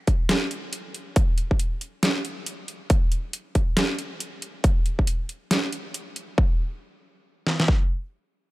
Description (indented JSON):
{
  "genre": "deep dubstep",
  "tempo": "138 BPM",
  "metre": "4/4",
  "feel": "swing 60% on 16ths, half-time",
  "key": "none",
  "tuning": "none",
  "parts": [
    { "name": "dubstep drum kit", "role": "drums", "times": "0.1-7.8 s", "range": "kick drum, snare drum", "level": "-21 LUFS", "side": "equal", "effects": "overdrive" },
    { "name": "dubstep drum kit", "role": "drums", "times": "0.1-6.3 s", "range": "hi-hat, snare drum", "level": "-25 LUFS", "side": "equal", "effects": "overdrive" }
  ],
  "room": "little or no reverb",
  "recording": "none",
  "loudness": "-22 LUFS",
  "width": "side -19 dB against mid",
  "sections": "0.0-6.4 A section; 6.4-8.5 B section",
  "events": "none",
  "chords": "none"
}